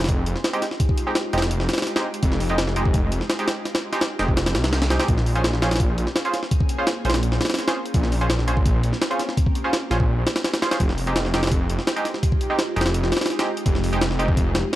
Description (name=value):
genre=drum and bass, jungle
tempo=168 BPM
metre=4/4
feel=straight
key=Bb dorian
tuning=A4 = 440 Hz
part: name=ethereal airy pad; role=sustained chords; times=0.1-14.8 s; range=Ab3 to Ab4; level=-31 LUFS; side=equal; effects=ensemble chorus, built-in reverb, phaser
part: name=detuned saw bass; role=bass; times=0.0-14.6 s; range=F1 to C2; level=-22 LUFS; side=equal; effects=none
part: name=jungle sampler-style drum kit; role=drums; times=0.0-14.8 s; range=hi-hat, kick drum, snare drum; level=-22 LUFS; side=equal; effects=studio reverb
part: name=band-passed chord stab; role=stabs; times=0.5-14.3 s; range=Ab3 to C5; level=-27 LUFS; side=right 2 dB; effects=chorus, dub echo
room=digital ambience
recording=dry, gritty hardware recording, vinyl crackle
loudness=-19 LUFS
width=side -15 dB against mid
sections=0.0-14.8 A section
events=none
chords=0.0 Fm9; 5.1 Bbm9; 10.8 Fm9